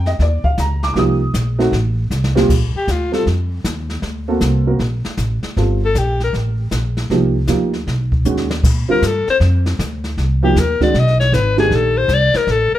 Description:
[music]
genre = jazz, small-group swing and bop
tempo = 156 BPM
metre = 4/4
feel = swing 65% on 8ths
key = Bb major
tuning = A4 = 443 Hz
[part]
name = dark upright piano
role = accompaniment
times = 0.0-12.1 s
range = Bb2 to Eb6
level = -18 LUFS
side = right 2 dB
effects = none
[part]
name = upright bass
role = bass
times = 0.0-12.8 s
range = G1 to Bb2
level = -17 LUFS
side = equal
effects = none
[part]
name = jazz brush drum kit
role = drums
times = 0.1-12.8 s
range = brushed snare drum, crash cymbal, hi-hat, kick drum, snare drum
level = -22 LUFS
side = equal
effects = none
[part]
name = breathy alto saxophone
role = melody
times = 2.8-3.3, 5.8-6.3, 8.9-12.8 s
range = F4 to D#5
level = -17 LUFS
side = left 4 dB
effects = plate reverb
[sound]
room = moderate studio reverb, RT60 0.5 s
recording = dark, warm production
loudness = -14 LUFS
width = side -13 dB against mid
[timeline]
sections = 0.0-2.5 A section; 2.5-12.8 A section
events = drum fill 2.1-2.5, 8.3-8.6; alto saxophone solo 2.5-12.8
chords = 0.0 Ebsus2; 1.0 Cm7; 1.7 F; 2.5 Bb; 4.0 D7b13; 5.6 Gm7; 7.1 Cm9; 7.9 Badd9; 8.6 Bb; 10.2 Cm7; 10.9 B7; 11.7 Bbmaj9

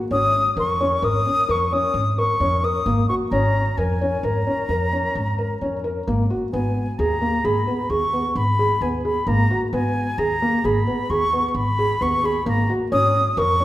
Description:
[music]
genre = contemporary instrumental, chamber music in an uneven meter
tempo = 131 BPM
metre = 7/4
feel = straight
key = G# dorian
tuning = A4 = 440 Hz
[part]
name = felt-muted upright piano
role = arpeggios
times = 0.0-13.6 s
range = A#3 to A#4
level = -23 LUFS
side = equal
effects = none
[part]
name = mellow concert flute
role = melody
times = 0.1-13.6 s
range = G#5 to D#6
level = -22 LUFS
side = equal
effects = none
[part]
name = upright bass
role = bass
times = 0.1-13.6 s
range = G#1 to E#2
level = -24 LUFS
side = equal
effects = none
[sound]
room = wet recital hall reverb, RT60 1.8 s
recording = recorded in a church or concert hall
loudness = -18 LUFS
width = side -14 dB against mid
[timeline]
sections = 0.0-13.6 A section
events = none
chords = 0.1 A#m/G#; 6.5 G#madd9; 12.9 A#m/G#

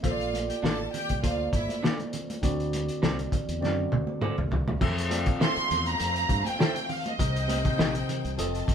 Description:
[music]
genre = lush 1970s-style soul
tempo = 101 BPM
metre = 4/4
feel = swing 54% on 16ths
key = F major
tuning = A4 = 443 Hz
[part]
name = clear symphonic string section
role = second line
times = 0.0-8.7 s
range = A3 to A5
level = -37 LUFS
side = left 2 dB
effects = none
[part]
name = tine electric piano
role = accompaniment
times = 0.0-8.7 s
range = C3 to F5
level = -31 LUFS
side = equal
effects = phaser
[part]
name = fingered electric bass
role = bass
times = 0.0-8.7 s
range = F1 to G2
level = -33 LUFS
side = equal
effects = none
[part]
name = cloth-damped thuddy drum kit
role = drums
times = 0.0-8.7 s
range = crash cymbal, hi-hat, kick drum, snare drum, toms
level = -28 LUFS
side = equal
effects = none
[part]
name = congas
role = percussion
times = 0.0-8.7 s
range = none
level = -39 LUFS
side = right 4 dB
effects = none
[part]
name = electric guitar through a small old amp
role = riff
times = 0.6-7.9 s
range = C4 to E5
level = -34 LUFS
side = right 2 dB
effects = none
[part]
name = warm studio violin section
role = melody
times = 5.4-8.0 s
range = Eb5 to C6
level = -29 LUFS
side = right 2 dB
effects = none
[sound]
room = moderate studio reverb, RT60 0.7 s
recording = band playing live in one room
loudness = -25 LUFS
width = side -8 dB against mid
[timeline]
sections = 0.0-4.8 A section; 4.8-8.7 B section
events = drum fill 3.6-4.8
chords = 0.0 Bbmaj7; 2.4 D7; 4.8 Fmaj7; 7.2 Cm7

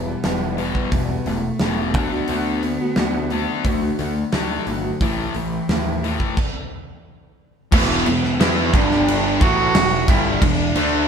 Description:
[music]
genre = quiet-loud alternative rock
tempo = 88 BPM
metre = 4/4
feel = straight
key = E minor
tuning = A4 = 445 Hz
[part]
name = dark cello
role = melody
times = 0.0-11.1 s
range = E3 to F#4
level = -24 LUFS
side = right 2 dB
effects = none
[part]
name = fingerpicked old ladder-braced acoustic guitar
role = arpeggios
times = 0.0-6.3 s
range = E2 to F#4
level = -28 LUFS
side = right 3 dB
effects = none
[part]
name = fuzz guitar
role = riff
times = 0.0-11.1 s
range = E2 to E4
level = -24 LUFS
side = left 6 dB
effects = distortion
[part]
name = overdriven picked electric bass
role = bass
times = 0.0-11.1 s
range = E1 to E2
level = -26 LUFS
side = right 1 dB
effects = none
[part]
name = big rock drum kit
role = drums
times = 0.2-10.9 s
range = crash cymbal, hi-hat, kick drum, snare drum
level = -21 LUFS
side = equal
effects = none
[part]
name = distorted electric guitar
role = riff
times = 7.7-11.1 s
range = E2 to E4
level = -23 LUFS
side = right 9 dB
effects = overdrive
[sound]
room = moderate studio reverb, RT60 0.8 s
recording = band playing live in one room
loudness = -17 LUFS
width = side -7 dB against mid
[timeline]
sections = 0.0-7.7 A section; 7.7-11.1 B section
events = stop 6.4-7.7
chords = 0.0 Em; 2.0 D; 5.0 Am; 7.7 E5; 8.7 G5; 9.4 Em

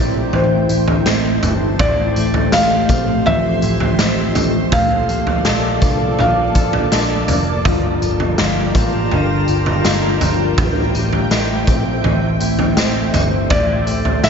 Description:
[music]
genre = dream pop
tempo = 82 BPM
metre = 4/4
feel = straight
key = unclear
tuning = A4 = 440 Hz
[part]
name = felt-muted upright piano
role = melody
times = 0.0-7.3, 13.5-14.3 s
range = C5 to F5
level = -20 LUFS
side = right 1 dB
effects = digital delay
[part]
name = shimmering ambient pad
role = sustained chords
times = 0.0-14.3 s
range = F3 to G5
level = -20 LUFS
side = equal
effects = chorus, built-in reverb
[part]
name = electric guitar at the edge of break-up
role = arpeggios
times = 0.0-14.3 s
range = G2 to A4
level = -22 LUFS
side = left 2 dB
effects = analog chorus, digital delay
[part]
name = vintage muted picked electric bass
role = bass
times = 0.0-14.3 s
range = F1 to C2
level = -21 LUFS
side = equal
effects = none
[part]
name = raw garage drum kit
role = drums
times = 0.3-14.3 s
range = kick drum, snare drum, tambourine, toms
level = -18 LUFS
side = equal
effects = none
[part]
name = drifting glass-harmonics texture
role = texture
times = 1.5-2.1, 8.6-10.9 s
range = F4 to Bb5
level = -28 LUFS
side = right 4 dB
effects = chorus, built-in reverb, digital delay
[sound]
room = light reverb, small room ambience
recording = nothing above 7.6 kHz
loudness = -13 LUFS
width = side -6 dB against mid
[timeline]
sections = 0.0-14.3 A section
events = none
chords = 0.0 Am7; 1.8 Fmaj7/A; 4.7 Bbmaj7; 7.7 Gm7; 10.6 Am7; 13.5 Fmaj7/A

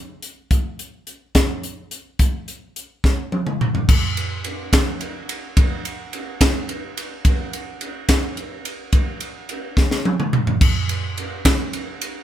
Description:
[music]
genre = rock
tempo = 71 BPM (dotted quarters)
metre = 6/8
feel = straight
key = none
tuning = none
[part]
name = crisp fusion drum kit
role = drums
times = 0.2-12.1 s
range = crash cymbal, hi-hat, kick drum, ride cymbal, snare drum, toms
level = -18 LUFS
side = equal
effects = none
[sound]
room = light reverb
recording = band playing live in one room, faint mains hum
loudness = -18 LUFS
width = side -11 dB against mid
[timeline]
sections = 0.0-3.9 A section; 3.9-12.2 B section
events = drum fill 3.0-3.9, 9.8-10.6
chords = none

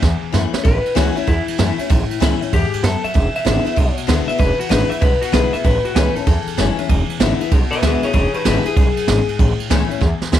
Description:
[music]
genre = rockabilly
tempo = 192 BPM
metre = 4/4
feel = swing 65% on 8ths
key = A major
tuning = A4 = 441 Hz
[part]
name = picked steel-string acoustic guitar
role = accompaniment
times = 0.0-10.4 s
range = E2 to E4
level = -22 LUFS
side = left 10 dB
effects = none
[part]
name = upright bass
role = bass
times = 0.0-10.4 s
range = E1 to F#2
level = -18 LUFS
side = right 1 dB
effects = none
[part]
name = jazz brush drum kit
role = drums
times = 0.0-10.4 s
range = kick drum, ride cymbal, snare drum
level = -19 LUFS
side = right 3 dB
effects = none
[part]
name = electric guitar through a small old amp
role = melody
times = 0.6-9.6 s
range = E4 to E5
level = -21 LUFS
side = left 2 dB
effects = tape echo
[sound]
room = studio reverb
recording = 1960s-style stereo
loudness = -14 LUFS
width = side -11 dB against mid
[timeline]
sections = 0.7-10.4 A section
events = drum fill 0.0-0.7, 10.0-10.4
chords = 0.0 A; 3.1 E7; 5.6 A; 6.9 E7; 9.4 A

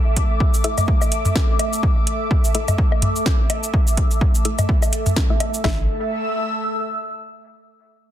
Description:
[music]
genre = minimal techno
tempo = 126 BPM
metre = 4/4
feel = swing 57% on 16ths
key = unclear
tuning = A4 = 440 Hz
[part]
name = airy breathy pad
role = texture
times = 0.0-7.5 s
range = A3 to E6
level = -24 LUFS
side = right 1 dB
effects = chorus, phaser, sidechain pumping
[part]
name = house drum kit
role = drums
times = 0.2-5.8 s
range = kick drum, snare drum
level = -18 LUFS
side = equal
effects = overdrive
[part]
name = house drum kit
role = drums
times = 0.2-5.6 s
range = hi-hat, shaker, snare drum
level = -25 LUFS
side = right 1 dB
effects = overdrive
[part]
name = wavetable chord stab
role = stabs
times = 0.6-5.8 s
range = A3 to E5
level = -30 LUFS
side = left 4 dB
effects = dub echo
[part]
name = electronic toms and woodblock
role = percussion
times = 0.8-5.5 s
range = none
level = -22 LUFS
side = left 1 dB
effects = none
[part]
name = resonant blip pluck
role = riff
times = 5.6-5.9 s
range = A3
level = -36 LUFS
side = left 8 dB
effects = none
[part]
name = saturated sub bass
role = bass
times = 5.6-5.9 s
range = A1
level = -24 LUFS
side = equal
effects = sidechain pumping
[sound]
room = light reverb, digital ambience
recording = dense, heavily limited modern master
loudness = -17 LUFS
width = side -11 dB against mid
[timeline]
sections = 0.0-5.6 A section; 5.6-7.5 B section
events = none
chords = 0.0 A5

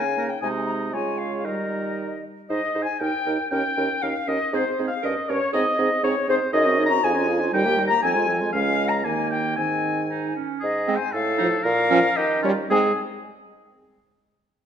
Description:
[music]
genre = quick classical-period movement for wind quintet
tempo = 117 BPM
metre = 2/4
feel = straight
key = Ab major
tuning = A4 = 440 Hz
[part]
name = silver concert flute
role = melody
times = 0.0-13.0 s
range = Ab4 to Bb5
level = -25 LUFS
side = left 5 dB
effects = none
[part]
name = warm oboe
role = second line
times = 0.0-12.9 s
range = F4 to Bb5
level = -27 LUFS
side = equal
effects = none
[part]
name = clear clarinet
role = accompaniment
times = 0.0-12.9 s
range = Bb3 to C5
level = -30 LUFS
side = right 8 dB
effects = none
[part]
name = mellow French horn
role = accompaniment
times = 0.0-12.9 s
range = Eb3 to F4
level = -28 LUFS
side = right 2 dB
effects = none
[part]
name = dark bassoon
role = bass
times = 0.0-12.9 s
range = Db2 to Eb3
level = -27 LUFS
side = right 2 dB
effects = none
[sound]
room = wet recital hall reverb, RT60 1.7 s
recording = none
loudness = -20 LUFS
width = side -8 dB against mid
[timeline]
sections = 0.0-2.5 A section; 2.5-10.6 B section; 10.6-12.7 C section; 12.7-13.7 D section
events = none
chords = 0.4 Ab/C; 0.9 Db; 1.5 Eb; 2.5 Ab; 3.0 Eb; 3.5 Eb7; 4.5 Ab; 5.0 Eb7/G; 5.5 Ab; 6.5 Ab7/Gb; 7.0 Db/F; 7.5 Eb; 8.0 Fm; 8.5 Db; 9.0 Eb; 9.6 Ab; 11.1 F7/A; 11.6 Bbm; 12.2 Eb7; 12.7 Ab

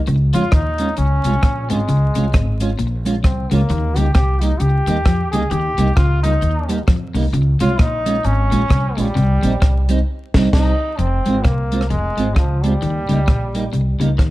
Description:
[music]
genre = ska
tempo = 132 BPM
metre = 4/4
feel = swing 59% on 8ths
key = F minor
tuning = A4 = 440 Hz
[part]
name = electric guitar at the edge of break-up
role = riff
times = 0.1-14.3 s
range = F2 to F3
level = -23 LUFS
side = left 3 dB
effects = slapback echo
[part]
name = upright bass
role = bass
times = 0.1-14.3 s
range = F1 to F2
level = -18 LUFS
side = equal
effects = none
[part]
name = compact cocktail drum kit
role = drums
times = 0.1-14.3 s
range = crash cymbal, hi-hat, kick drum, rim click, snare drum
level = -18 LUFS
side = equal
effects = none
[part]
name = cabasa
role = percussion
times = 0.1-10.0 s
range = none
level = -44 LUFS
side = right 10 dB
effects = none
[part]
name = brilliant trombone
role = melody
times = 0.3-14.0 s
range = F3 to Ab4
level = -23 LUFS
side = equal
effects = slapback echo
[part]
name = clean electric guitar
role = accompaniment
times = 0.3-14.2 s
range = G3 to F4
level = -22 LUFS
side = right 3 dB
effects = analog chorus
[sound]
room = small room ambience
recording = dark, warm production, vinyl crackle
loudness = -15 LUFS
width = side -17 dB against mid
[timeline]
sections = 0.0-11.0 A section; 11.0-14.3 B section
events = band accent 10.1-11.0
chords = 0.1 Db; 3.7 Eb; 7.3 Db; 9.2 Cm; 11.0 Fm; 12.8 Eb

